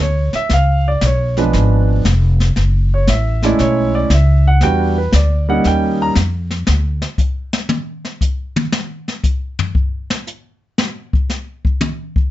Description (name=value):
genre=jazz piano trio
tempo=117 BPM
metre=4/4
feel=swing 69% on 8ths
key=unclear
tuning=A4 = 439 Hz
part: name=warm baby grand piano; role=melody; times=0.0-6.1 s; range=E#3 to A#5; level=-16 LUFS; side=right 2 dB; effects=none
part: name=upright bass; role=bass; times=0.0-7.0 s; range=E#1 to E#2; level=-14 LUFS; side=equal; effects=none
part: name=jazz brush drum kit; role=drums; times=0.3-12.2 s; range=brushed snare drum, hi-hat, kick drum, snare drum, toms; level=-18 LUFS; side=left 2 dB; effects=none
room=light reverb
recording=nothing above 7.8 kHz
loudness=-14 LUFS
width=side -14 dB against mid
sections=0.0-12.3 A section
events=grand piano solo 0.0-12.3; drum solo 6.7-12.3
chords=0.5 C#7b9; 2.6 F#m7; 4.6 Em9; 5.6 D#9; 6.7 N.C.